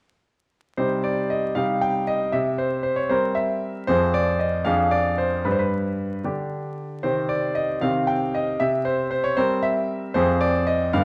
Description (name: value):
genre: classical-period piano sonatina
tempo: 77 BPM (dotted quarters)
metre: 6/8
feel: straight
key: C minor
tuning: A4 = 440 Hz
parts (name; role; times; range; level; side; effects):
- bright concert grand piano; solo; 0.8-11.0 s; F2 to G5; -23 LUFS; equal; none
room: moderate recital hall reverb, RT60 1.4 s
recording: dark, warm production, vinyl crackle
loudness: -23 LUFS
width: mono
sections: 0.8-11.0 A section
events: none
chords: 0.8 Cm; 2.3 C7; 3.9 Fm; 4.7 Ddim/F; 5.5 G; 7.0 Cm; 8.6 C7; 10.2 Fm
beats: | 0.78 1.56 | 2.34 3.11 | 3.89 4.67 | 5.46 6.25 | 7.04 7.83 | 8.61 9.38 | 10.15 10.93